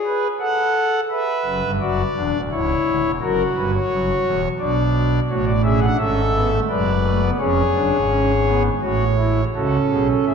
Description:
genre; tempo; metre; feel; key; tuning
classical, baroque-style 4-part fugue for pipe organ; 85 BPM; 3/4; straight; unclear; A4 = 439 Hz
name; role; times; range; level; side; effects
pipe organ, foundations; solo; 0.0-10.3 s; C#1 to F#5; -17 LUFS; equal; none
room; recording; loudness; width
wet church reverb, RT60 3.3 s; dark, warm production; -17 LUFS; side -6 dB against mid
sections
0.0-9.6 A section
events
none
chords
0.4 F#m/A; 1.1 Bm; 2.5 C#m; 3.2 F#7; 4.6 Bm; 5.3 F#m/A; 6.7 G#m7b5/F#; 7.4 C#7/E#; 8.8 F#m/A; 9.6 A

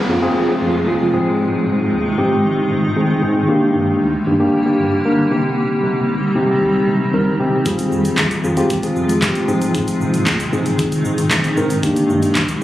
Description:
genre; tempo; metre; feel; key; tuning
dance-pop; 115 BPM; 4/4; straight; F dorian; A4 = 440 Hz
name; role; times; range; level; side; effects
granular cloud pad; sustained chords; 0.0-12.6 s; C3 to G4; -19 LUFS; equal; built-in reverb, sidechain pumping
downlifter; sound effects; 0.0-3.5 s; none; -26 LUFS; equal; none
mellow tine electric piano; accompaniment; 0.1-12.6 s; Bb3 to Bb4; -17 LUFS; left 1 dB; sidechain pumping
round analog bass; bass; 0.1-12.5 s; F1 to C3; -25 LUFS; equal; sidechain pumping
pop drum kit; drums; 7.7-12.6 s; handclaps, hi-hat, kick drum, shaker, snare drum; -20 LUFS; equal; none
room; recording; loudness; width
light reverb; recorded on a phone in the room, club reverb; -14 LUFS; side -14 dB against mid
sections
0.0-12.6 A section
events
none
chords
0.0 Fm; 1.1 Ab; 3.5 Gm; 5.3 Cm; 7.7 Fm; 9.5 Ab; 11.8 Gm

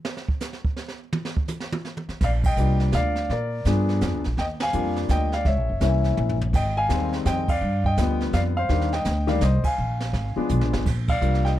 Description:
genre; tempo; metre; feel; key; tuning
jazz piano trio; 166 BPM; 3/4; swing 63% on 8ths; Eb major; A4 = 439 Hz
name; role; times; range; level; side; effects
jazz brush drum kit; drums; 0.0-11.6 s; brushed snare drum, crash cymbal, hi-hat, kick drum, ride cymbal, snare drum, toms; -29 LUFS; right 2 dB; none
upright bass; bass; 2.1-11.6 s; Gb1 to Bb2; -23 LUFS; equal; none
warm concert grand piano; melody; 2.2-11.6 s; D3 to Ab5; -25 LUFS; left 2 dB; plate reverb
room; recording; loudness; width
light reverb; dark, warm production; -21 LUFS; side -13 dB against mid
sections
0.0-2.2 A section; 2.2-10.9 B section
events
drum solo 0.0-2.2; band accent 2.4, 4.6, 7.4, 9.6, 11.0; drum fill 6.2-6.5, 10.5-10.9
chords
0.0 N.C.; 2.2 Gm7; 3.3 Bb7b9; 4.4 Ebmaj9; 5.5 Gb7#11 (rootless); 6.5 Fm7; 7.6 G7; 8.7 Cm7; 9.8 Bb7b9; 10.9 Ebmaj9 (rootless)

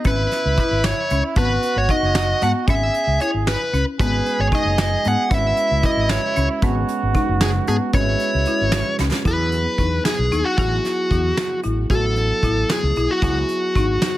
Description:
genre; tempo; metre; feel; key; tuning
progressive instrumental, band music in an uneven meter; 228 BPM (eighths); 5/8; straight; E major; A4 = 439 Hz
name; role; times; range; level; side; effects
warm flugelhorn; second line; 0.0-9.0 s; E4 to G#4; -25 LUFS; right 5 dB; none
soft brush drum kit; drums; 0.0-14.1 s; hi-hat, kick drum, snare drum; -22 LUFS; equal; none
dark smooth lead guitar; melody; 0.1-14.2 s; F#4 to F#5; -22 LUFS; left 1 dB; overdrive, tape echo
folk marimba with hard mallets; arpeggios; 0.1-14.1 s; B3 to F#4; -27 LUFS; left 4 dB; none
fretless electric bass; bass; 0.1-14.0 s; F#1 to G#2; -22 LUFS; equal; analog chorus
overdriven tine electric piano; accompaniment; 4.0-14.2 s; F#3 to B4; -28 LUFS; right 5 dB; phaser
room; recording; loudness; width
light reverb; none; -17 LUFS; side -15 dB against mid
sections
0.0-9.3 A section; 9.3-14.2 B section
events
drum fill 9.0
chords
0.1 E6/G#; 1.4 G#m7; 2.7 E6/G#; 4.0 G#m7; 5.3 E6/G#; 6.6 G#m7; 7.9 E6/G#; 9.3 Emaj7; 10.6 Asus2; 11.9 F#m7/A; 13.2 C#m9

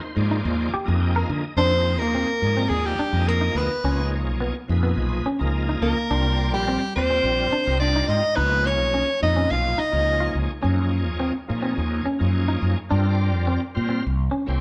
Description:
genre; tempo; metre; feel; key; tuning
jazz; 106 BPM; 4/4; straight; unclear; A4 = 439 Hz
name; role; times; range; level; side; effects
bright tonewheel organ; accompaniment; 0.0-14.6 s; Bb2 to G5; -32 LUFS; equal; slow rotary speaker, overdrive, chorus vibrato
clean electric guitar; stabs; 0.0-14.5 s; Cb4 to Bb4; -31 LUFS; equal; none
mellow fretless electric bass; bass; 0.2-14.6 s; Bb1 to D3; -25 LUFS; equal; none
edgy soprano saxophone; melody; 1.6-10.4 s; G4 to F5; -25 LUFS; equal; none
hollow-body jazz guitar; second line; 1.6-10.4 s; G3 to F4; -31 LUFS; equal; none
room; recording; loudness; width
wet stone room reverb, RT60 1.2 s; band playing live in one room; -22 LUFS; mono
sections
0.0-1.6 A section; 1.6-14.6 B section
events
tonewheel organ fill 0.7-1.6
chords
0.0 Fm9; 1.6 Fm7; 3.8 Db7; 6.1 Cm11; 8.4 Db13; 10.6 Gb69; 12.9 Gm7; 14.0 C7b9

